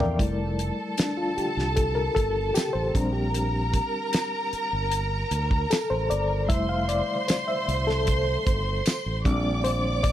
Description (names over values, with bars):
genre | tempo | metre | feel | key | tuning
lush 1970s-style soul | 76 BPM | 4/4 | straight | F major | A4 = 439 Hz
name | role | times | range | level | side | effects
reed electric piano | accompaniment | 0.0-10.1 s | F3 to Bb5 | -27 LUFS | left 2 dB | fast tremolo
fingered electric bass | bass | 0.0-10.1 s | F1 to E2 | -28 LUFS | right 1 dB | none
damped 70s drum kit | drums | 0.0-10.1 s | hi-hat, kick drum, snare drum, toms | -25 LUFS | equal | none
warm studio string section | second line | 0.2-10.1 s | A4 to D6 | -29 LUFS | right 1 dB | none
tambourine | percussion | 1.0-9.0 s | none | -37 LUFS | right 19 dB | none
room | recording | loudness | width
studio reverb | dry, close 1970s-style studio recording | -23 LUFS | side -12 dB against mid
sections
0.2-10.1 A section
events
drum fill 0.0; reed electric piano fill 0.0; reed electric piano solo 0.2-10.1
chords
0.2 Fmaj9; 3.0 Bb69; 6.5 Fmaj9; 9.3 Bb69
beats
| 0.19 0.98 1.77 2.56 | 3.35 4.13 4.92 5.71 | 6.50 7.29 8.07 8.86 | 9.65